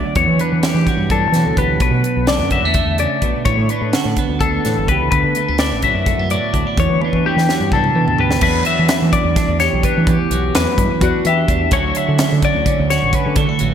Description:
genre	math rock and midwest emo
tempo	254 BPM (eighths)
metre	7/8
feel	straight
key	unclear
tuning	A4 = 440 Hz
part	twelve-string electric guitar	accompaniment	0.0-13.7 s	D2 to G4	-20 LUFS	right 7 dB	none
part	twelve-string electric guitar	arpeggios	0.0-13.7 s	F#4 to E5	-19 LUFS	left 7 dB	phaser, diffuse ambient delay
part	growling fingered electric bass	bass	0.0-13.7 s	G1 to E3	-20 LUFS	equal	overdrive
part	crisp fusion drum kit	drums	0.2-13.7 s	crash cymbal, hi-hat, kick drum, snare drum, toms	-20 LUFS	equal	none
room	moderate lush hall reverb, RT60 1.9 s, small room ambience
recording	dreamy mix soaked in reverb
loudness	-14 LUFS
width	side -8 dB against mid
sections	0.0-8.4 A section; 8.4-13.7 B section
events	drum fill 7.0-8.4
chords	0.2 Em9; 1.8 Bm9; 3.5 A9sus4; 5.1 D69; 6.8 Em9; 11.7 Dmaj9

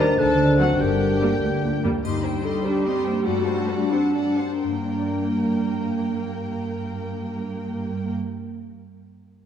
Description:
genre	classical, dramatic, fast romantic movement for symphony orchestra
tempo	80-100 BPM (dotted quarters)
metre	6/8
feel	rubato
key	G minor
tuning	A4 = 436 Hz
part	rich studio violin section	melody	0.0-8.1 s	F#5 to C6	-35 LUFS	left 3 dB	none
part	clear symphonic violin section	second line	0.0-8.1 s	F#4 to F#5	-35 LUFS	left 2 dB	none
part	dark clarinet	second line	0.0-8.1 s	Bb3 to Bb4	-28 LUFS	equal	none
part	mellow hollow silver concert flute	second line	0.0-1.8 s	F#6 to A6	-32 LUFS	left 4 dB	none
part	clear symphonic viola section	accompaniment	0.0-8.1 s	F#3 to C4	-29 LUFS	right 2 dB	none
part	mellow bassoon	accompaniment	0.0-1.8 s	D3 to Eb3	-31 LUFS	right 1 dB	none
part	dark French horn section	sustained chords	0.0-1.7 s	Bb4 to C5	-25 LUFS	equal	none
part	concert harp	arpeggios	0.0-8.9 s	G2 to D5	-26 LUFS	left 4 dB	none
part	rich symphonic cello section	bass	0.0-8.1 s	D2 to D4	-30 LUFS	right 3 dB	none
part	rich symphonic double bass section	bass	0.0-1.9 s	G1 to D2	-27 LUFS	right 2 dB	none
part	triangle	percussion	2.0-2.8 s	none	-49 LUFS	left 2 dB	none
room	wet concert hall reverb, RT60 2.4 s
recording	dark, warm production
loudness	-21 LUFS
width	side -9 dB against mid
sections	0.0-2.0 A section; 2.0-4.6 B section; 4.6-7.4 C section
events	slowing down 1.4-4.6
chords	0.2 D7; 0.8 Gm; 2.0 Cm/G; 3.3 D7/G; 4.6 Gm

